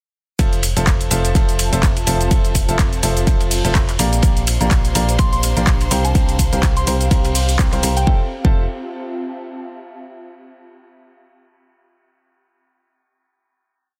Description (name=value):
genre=piano house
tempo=125 BPM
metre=4/4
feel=swing 56% on 16ths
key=F major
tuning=A4 = 440 Hz
part: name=bright grand piano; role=riff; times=0.4-8.6 s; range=F3 to C6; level=-26 LUFS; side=equal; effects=sidechain pumping, digital delay
part: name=solid FM bass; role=bass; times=0.4-8.7 s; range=F1 to C2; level=-22 LUFS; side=equal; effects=sidechain pumping
part: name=crunchy breakbeat drum kit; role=drums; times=0.4-8.0 s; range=hi-hat, ride cymbal, snare drum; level=-33 LUFS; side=equal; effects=high-pass filter on cymbals, high-pass filter on hats, high-pass filter on snare, high-pass filter on room
part: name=electronic kick drum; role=drums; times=0.4-8.5 s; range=none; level=-18 LUFS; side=equal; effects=none
part: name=punchy analog drum machine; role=drums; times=0.4-8.1 s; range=handclaps, hi-hat, shaker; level=-25 LUFS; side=equal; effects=none
part: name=ethereal airy pad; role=texture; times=1.2-10.0 s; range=C4 to Bb5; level=-32 LUFS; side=equal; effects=ensemble chorus, built-in reverb, sidechain pumping
part: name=clear symphonic violin section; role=sustained chords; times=4.2-8.1 s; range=C5 to C6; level=-35 LUFS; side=equal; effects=sidechain pumping
part: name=soft synth bell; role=melody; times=5.2-8.1 s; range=G5 to C6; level=-30 LUFS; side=equal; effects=chorus, digital delay
room=small room ambience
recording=dense, heavily limited modern master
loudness=-17 LUFS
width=mono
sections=0.4-8.1 drop; 8.1-10.0 final chord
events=drop 0.4-8.1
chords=0.4 Fmaj7; 4.0 Bb6; 5.9 C7sus4; 8.1 Fmaj7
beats=| 0.39 0.87 1.35 1.83 | 2.31 2.79 3.27 3.75 | 4.23 4.71 5.19 5.67 | 6.15 6.63 7.11 7.59 | 8.07 8.55 9.03 9.51